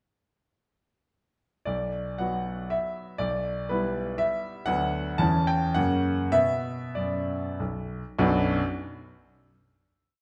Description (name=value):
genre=classical, romantic triple-time dance for piano with dotted rhythms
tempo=90-127 BPM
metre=3/4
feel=rubato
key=B minor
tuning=A4 = 440 Hz
part: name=clear grand piano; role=solo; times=1.7-8.6 s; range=B1 to A5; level=-28 LUFS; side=equal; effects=none
room=wet recital hall reverb, RT60 1.4 s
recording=none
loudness=-28 LUFS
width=mono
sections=1.7-8.2 A section; 8.2-9.9 final chord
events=slowing down 4.0-8.2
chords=1.7 Bm; 3.2 Em7/B; 4.7 Bm/D; 5.2 C#dim/E; 5.8 F#; 6.3 Bm